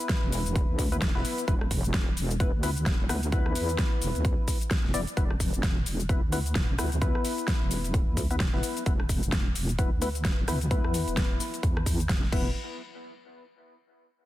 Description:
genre	bass house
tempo	130 BPM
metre	4/4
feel	swing 59% on 16ths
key	unclear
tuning	A4 = 441 Hz
part	percussive organ stab	stabs	0.0-12.5 s	B3 to D5	-34 LUFS	left 3 dB	analog chorus, sidechain pumping, dub echo
part	big-room dance drum kit	drums	0.0-12.4 s	crash cymbal, hi-hat, rim click, shaker, snare drum	-33 LUFS	equal	overdrive
part	electronic kick drum	drums	0.1-12.4 s	none	-27 LUFS	equal	overdrive
part	wobble bass	bass	0.2-12.5 s	E1 to E2	-30 LUFS	equal	chorus, overdrive, sidechain pumping
room	little or no reverb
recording	dense, heavily limited modern master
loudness	-25 LUFS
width	side -15 dB against mid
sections	0.0-12.6 A section; 12.6-14.3 B section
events	filter sweep on wobble bass 0.0-12.6; filter sweep on synth stab 0.0-12.6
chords	0.0 E5; 12.6 N.C.

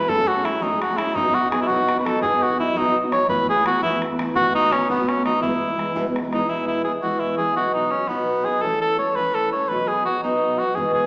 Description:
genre	celtic folk, Celtic jig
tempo	112 BPM (dotted quarters)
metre	6/8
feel	straight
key	unclear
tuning	A4 = 440 Hz
part	warm cor anglais	melody	0.0-11.1 s	B3 to C#5	-20 LUFS	equal	none
part	fingerpicked steel-string acoustic guitar	accompaniment	0.0-11.1 s	E2 to A4	-24 LUFS	equal	none
part	bodhran	percussion	0.0-6.5, 10.8-10.9 s	none	-32 LUFS	equal	none
room	wet recital hall reverb, RT60 1.5 s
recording	recorded in a church or concert hall, small speaker sound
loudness	-18 LUFS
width	side -27 dB against mid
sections	0.0-6.5 A section; 6.5-11.1 B section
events	none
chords	0.1 F#madd9; 1.2 B; 3.3 Asus2; 4.4 B7; 5.4 E; 7.6 B; 8.6 A; 9.7 B

